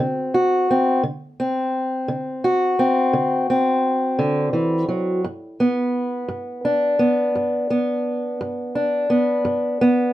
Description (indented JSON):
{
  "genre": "blues",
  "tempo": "57 BPM (dotted quarters)",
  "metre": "12/8",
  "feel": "straight",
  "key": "G major",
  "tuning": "A4 = 438 Hz",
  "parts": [
    { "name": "fingerpicked steel-string acoustic guitar", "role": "solo", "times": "0.0-10.1 s", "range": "G2 to F#4", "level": "-18 LUFS", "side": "equal", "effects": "none" }
  ],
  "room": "moderate studio reverb, RT60 0.5 s",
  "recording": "none",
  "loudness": "-18 LUFS",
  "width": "side -14 dB against mid",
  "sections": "0.0-10.1 A section",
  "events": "none",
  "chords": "0.0 D7; 5.3 G"
}